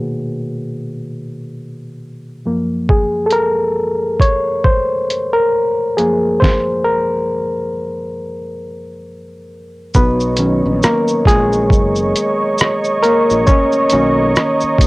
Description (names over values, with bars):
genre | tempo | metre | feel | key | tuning
lo-fi hip hop | 68 BPM | 4/4 | swing 58% on 16ths | B lydian | A4 = 439 Hz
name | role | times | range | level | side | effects
barky reed electric piano | accompaniment | 0.0-14.9 s | F#2 to C#5 | -16 LUFS | left 1 dB | overdrive, cassette tape, low-pass filter
lo-fi sampler-style drum kit | drums | 2.9-14.9 s | hi-hat, kick drum, rim click, shaker, snare drum | -14 LUFS | equal | cassette tape
warm analog pad | sustained chords | 9.9-14.9 s | C#5 to C#6 | -18 LUFS | right 2 dB | chorus, low-pass filter, cassette tape
sustaining fretless electric bass | bass | 10.0-14.9 s | F#1 to D#2 | -20 LUFS | equal | transformer saturation, ensemble chorus
room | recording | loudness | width
light reverb | home recording on cassette | -13 LUFS | side -21 dB against mid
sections
0.0-10.0 A section; 10.0-14.9 B section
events
reed electric piano solo 0.0-10.0, 10.0-14.9; filter sweep on reed electric piano 0.0-10.0; stop 6.4-10.0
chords
0.0 Bmaj7; 2.5 F#maj7; 10.0 Bmaj9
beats
0.24 1.13 2.01 | 2.89 3.77 4.66 5.54 | 6.42 7.30 8.19 9.07 | 9.95 10.83 11.72 12.60 | 13.48 14.36